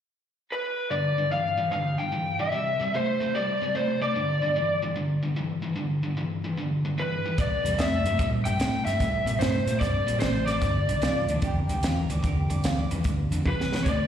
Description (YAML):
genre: electric blues shuffle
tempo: 148 BPM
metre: 4/4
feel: swing 66% on 8ths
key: G mixolydian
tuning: A4 = 439 Hz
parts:
  - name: lead guitar through a small cranked amp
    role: melody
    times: 0.5-14.1 s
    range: B4 to G5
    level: -27 LUFS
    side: equal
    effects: overdrive, slapback echo
  - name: overdriven electric guitar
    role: riff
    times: 0.9-14.1 s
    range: G2 to A3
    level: -29 LUFS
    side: left 1 dB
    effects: slapback echo
  - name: vintage muted fingered electric bass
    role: bass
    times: 7.4-14.1 s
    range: G1 to Bb2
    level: -28 LUFS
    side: equal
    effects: none
  - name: compact cocktail drum kit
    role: drums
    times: 7.4-14.0 s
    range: hi-hat, kick drum, snare drum, toms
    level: -29 LUFS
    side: right 1 dB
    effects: slapback echo
  - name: electric guitar through a small old amp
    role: second line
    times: 11.0-13.1 s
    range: D4 to F5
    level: -35 LUFS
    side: right 3 dB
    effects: spring reverb, slapback echo
room: light reverb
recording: live gig heard through the venue's PA, recital hall reverb, lossy compression artefacts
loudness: -24 LUFS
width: side -9 dB against mid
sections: 0.9-14.1 A section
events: drum fill 13.4-13.9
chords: 0.0 N.C.; 0.9 G5; 2.5 C; 4.1 G5; 7.4 C7; 10.6 G7(no3)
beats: 0.10 0.51 | 0.91 1.31 1.72 2.12 | 2.53 2.93 3.33 3.74 | 4.14 4.55 4.95 5.36 | 5.76 6.17 6.57 6.98 | 7.38 7.79 8.19 8.60 | 9.00 9.40 9.81 10.21 | 10.62 11.02 11.43 11.83 | 12.24 12.64 13.05 13.45 | 13.86